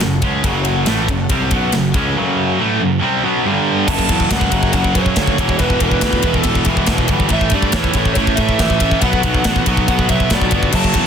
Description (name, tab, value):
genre	heavy metal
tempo	140 BPM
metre	4/4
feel	straight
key	F# phrygian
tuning	A4 = 439 Hz
part	dark symphonic string section	sustained chords	0.0-3.9, 10.8-11.1 s	D3 to G5	-28 LUFS	equal	none
part	scooped high-gain guitar	riff	0.0-11.1 s	E2 to C#4	-18 LUFS	right 10 dB	distortion
part	tight distorted guitar	riff	0.0-11.1 s	E2 to C#4	-20 LUFS	left 14 dB	distortion
part	fuzz picked electric bass	bass	0.0-11.1 s	E1 to A2	-21 LUFS	equal	overdrive
part	tight metal drum kit	drums	0.0-11.1 s	crash cymbal, kick drum, ride cymbal, snare drum	-18 LUFS	equal	none
part	bluesy overdriven lead guitar	melody	3.9-11.1 s	B4 to A5	-21 LUFS	right 1 dB	distortion
room	light reverb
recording	dense, heavily limited modern master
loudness	-13 LUFS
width	side -7 dB against mid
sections	0.0-3.9 A section; 3.9-11.1 B section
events	none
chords	0.0 F#m; 3.5 G5; 3.9 F#m; 5.4 E5; 7.3 A; 9.0 B5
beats	0.01 | 0.44 0.87 1.30 1.73 | 2.16 2.59 3.02 3.45 | 3.88 4.31 4.74 5.17 | 5.60 6.03 6.46 6.89 | 7.32 7.75 8.17 8.60 | 9.03 9.46 9.89 10.32 | 10.75